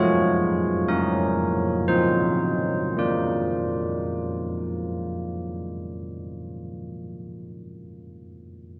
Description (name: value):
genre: classical, tune for church bells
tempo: 54-66 BPM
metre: 3/4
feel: straight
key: unclear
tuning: A4 = 439 Hz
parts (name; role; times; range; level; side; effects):
- carillon bells; solo; 0.0-7.3 s; F3 to D5; -26 LUFS; equal; none
room: wet cathedral reverb, RT60 4.3 s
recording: dark, warm production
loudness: -25 LUFS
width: mono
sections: 0.0-3.0 A section; 3.0-6.3 B section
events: slowing down 0.0-3.0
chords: 0.0 Bbm/F; 1.9 F5; 3.0 Bb